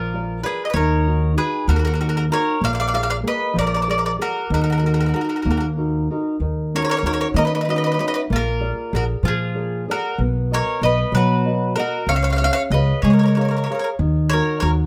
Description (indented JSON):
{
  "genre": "italian folk, Italian serenade",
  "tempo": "64 BPM (dotted quarters)",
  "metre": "6/8",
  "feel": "straight",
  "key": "Eb minor",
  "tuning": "A4 = 436 Hz",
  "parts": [
    { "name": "mandolin", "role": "melody", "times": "0.0-14.7 s", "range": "Ab4 to F5", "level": "-26 LUFS", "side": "equal", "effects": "plate reverb" },
    { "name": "bowl-back mandolin", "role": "second line", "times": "0.0-14.7 s", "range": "F4 to D5", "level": "-28 LUFS", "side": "equal", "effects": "none" },
    { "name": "nylon-string guitar", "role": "accompaniment", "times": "0.0-14.9 s", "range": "Eb3 to F5", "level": "-25 LUFS", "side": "equal", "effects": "none" },
    { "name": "upright bass", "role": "bass", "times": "0.0-14.8 s", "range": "Bb1 to Eb3", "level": "-23 LUFS", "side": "equal", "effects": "none" }
  ],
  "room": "moderate small room reverb, RT60 0.5 s",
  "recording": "close, detailed microphones",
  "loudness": "-20 LUFS",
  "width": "mono",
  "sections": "0.0-6.4 A section; 6.4-14.9 B section",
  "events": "none",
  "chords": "0.0 Bb; 0.7 Ebm; 2.6 Bb7; 4.5 Ebm; 6.4 Ebm7; 8.3 Bb7; 10.2 Bmaj7; 12.1 Db; 14.0 Ebm"
}